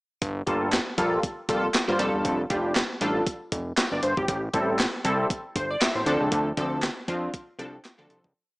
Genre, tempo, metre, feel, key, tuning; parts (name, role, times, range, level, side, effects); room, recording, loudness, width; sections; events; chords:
early-eighties boogie funk; 118 BPM; 4/4; swing 56% on 16ths; G dorian; A4 = 441 Hz
fat analog bass; bass; 0.2-8.3 s; E1 to F2; -30 LUFS; equal
clean 12-bit digital drum machine; drums; 0.2-8.3 s; handclaps, hi-hat, kick drum, snare drum; -27 LUFS; equal; overdrive, gated reverb
funky polysynth comp; accompaniment; 0.5-8.3 s; F3 to E5; -26 LUFS; equal; chorus
group handclap; percussion; 0.7-8.0 s; -33 LUFS; right 2 dB
light reverb, digital ambience; small speaker sound; -23 LUFS; side -23 dB against mid
0.2-8.4 verse
fade-out 6.3-8.4
0.2 Gm9; 2.0 F69; 4.3 Am7; 6.1 Dm7